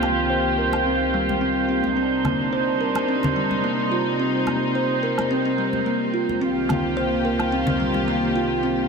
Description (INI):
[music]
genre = organic downtempo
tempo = 108 BPM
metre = 4/4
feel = swing 53% on 16ths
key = C minor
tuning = A4 = 440 Hz
[part]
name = dark studio string section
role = sustained chords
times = 0.0-8.9 s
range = C2 to G4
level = -24 LUFS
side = equal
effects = low-pass filter
[part]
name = kalimba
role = arpeggios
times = 0.0-8.8 s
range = G3 to C5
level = -23 LUFS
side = equal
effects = vintage 12-bit sampler grit, low-pass filter, ping-pong delay
[part]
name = woodblock and shaker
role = drums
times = 0.0-8.9 s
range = none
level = -31 LUFS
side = right 3 dB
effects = low-pass filter on perc
[part]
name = congas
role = percussion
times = 0.0-8.1 s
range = none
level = -30 LUFS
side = left 2 dB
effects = none
[part]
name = drifting glass-harmonics texture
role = texture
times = 0.0-8.9 s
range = C5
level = -27 LUFS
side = right 8 dB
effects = chorus, built-in reverb
[sound]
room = moderate huge ambient reverb, RT60 4.8 s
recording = none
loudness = -19 LUFS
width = side -5 dB against mid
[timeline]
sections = 0.0-8.9 A section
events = none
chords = 0.0 Ebadd9/C; 2.0 Cm7; 6.4 Ebadd9/C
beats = 0.31 0.86 1.42 | 1.97 2.53 3.08 3.64 | 4.19 4.75 5.31 5.86 | 6.42 6.97 7.53 8.08 | 8.64